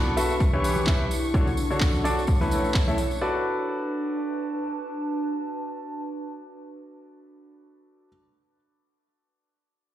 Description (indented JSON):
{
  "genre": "piano house",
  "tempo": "128 BPM",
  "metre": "4/4",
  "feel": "swing 56% on 16ths",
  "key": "B minor",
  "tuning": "A4 = 440 Hz",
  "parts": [
    { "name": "muted symphonic violin section", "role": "sustained chords", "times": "0.0-3.2 s", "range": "C#6", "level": "-37 LUFS", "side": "left 1 dB", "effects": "sidechain pumping" },
    { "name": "clear baby grand piano", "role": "riff", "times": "0.0-8.1 s", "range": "A2 to E5", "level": "-28 LUFS", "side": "left 1 dB", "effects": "sidechain pumping, low-pass filter, dub echo" },
    { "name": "warbly tape-like pad", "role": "texture", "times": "0.0-7.7 s", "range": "D4 to A5", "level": "-31 LUFS", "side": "right 1 dB", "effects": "chorus, built-in reverb, sidechain pumping" },
    { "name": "tambourine and congas", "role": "percussion", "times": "0.2-3.2 s", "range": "none", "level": "-36 LUFS", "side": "right 1 dB", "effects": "none" },
    { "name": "electronic kick drum", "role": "drums", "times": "0.4-2.9 s", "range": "none", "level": "-24 LUFS", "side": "equal", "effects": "none" },
    { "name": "electronic handclaps", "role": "drums", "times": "0.9-2.8 s", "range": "none", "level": "-32 LUFS", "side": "equal", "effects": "none" }
  ],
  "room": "moderate digital room reverb, RT60 1.2 s, small room ambience",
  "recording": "played on a big sound system in a bare room, stone room reverb",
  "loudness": "-23 LUFS",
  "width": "side -12 dB against mid",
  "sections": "0.0-3.2 A section; 3.2-7.0 B section",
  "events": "none",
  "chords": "0.4 Em7; 1.1 Dmaj7; 2.3 A; 3.2 Bm7"
}